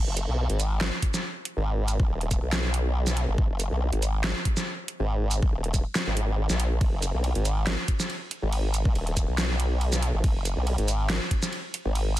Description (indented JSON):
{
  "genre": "heavy wobble dubstep",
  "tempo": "140 BPM",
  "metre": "4/4",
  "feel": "swing 54% on 16ths, half-time",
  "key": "G# minor",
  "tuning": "A4 = 441 Hz",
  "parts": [
    { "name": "formant-sweep wobble bass", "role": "bass", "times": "0.0-12.2 s", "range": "D#1 to B1", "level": "-25 LUFS", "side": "equal", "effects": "chorus, overdrive" },
    { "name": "dubstep drum kit", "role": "drums", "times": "0.2-12.2 s", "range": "handclaps, hi-hat, ride cymbal, shaker, snare drum", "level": "-30 LUFS", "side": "right 1 dB", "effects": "none" },
    { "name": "electronic kick drum", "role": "drums", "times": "1.0-11.4 s", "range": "none", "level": "-25 LUFS", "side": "equal", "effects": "none" }
  ],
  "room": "little or no reverb",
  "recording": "dense, heavily limited modern master",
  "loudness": "-24 LUFS",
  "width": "side -14 dB against mid",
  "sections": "0.0-12.2 A section",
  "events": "none",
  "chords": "none"
}